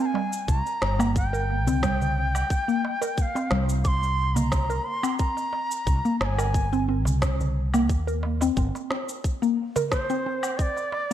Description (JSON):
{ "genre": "organic downtempo", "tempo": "89 BPM", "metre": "4/4", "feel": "swing 54% on 16ths", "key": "unclear", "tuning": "A4 = 441 Hz", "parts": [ { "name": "bright reedy bansuri", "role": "melody", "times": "0.0-11.1 s", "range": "C5 to D6", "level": "-29 LUFS", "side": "right 1 dB", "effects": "digital delay" }, { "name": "mallet-like synth pluck", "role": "arpeggios", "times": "0.0-11.1 s", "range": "G3 to Bb4", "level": "-28 LUFS", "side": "left 1 dB", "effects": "chorus, phaser, digital delay" }, { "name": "darbuka", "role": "percussion", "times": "0.2-11.1 s", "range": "none", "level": "-34 LUFS", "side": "right 2 dB", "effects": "none" }, { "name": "electronic cabasa, snare drum and woodblock", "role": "drums", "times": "0.3-10.9 s", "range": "none", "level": "-32 LUFS", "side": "equal", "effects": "none" }, { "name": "mellow fretless electric bass", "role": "bass", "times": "0.5-8.7 s", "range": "G1 to Eb2", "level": "-25 LUFS", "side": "equal", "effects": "lush chorus" }, { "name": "electronic kick drum", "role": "drums", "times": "0.5-10.7 s", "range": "none", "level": "-26 LUFS", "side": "equal", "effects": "none" } ], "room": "light reverb", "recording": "dark, warm production", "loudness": "-22 LUFS", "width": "side -11 dB against mid", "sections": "0.0-11.1 A section", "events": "none", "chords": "0.0 Gm; 3.8 Gmadd11; 9.2 Bb" }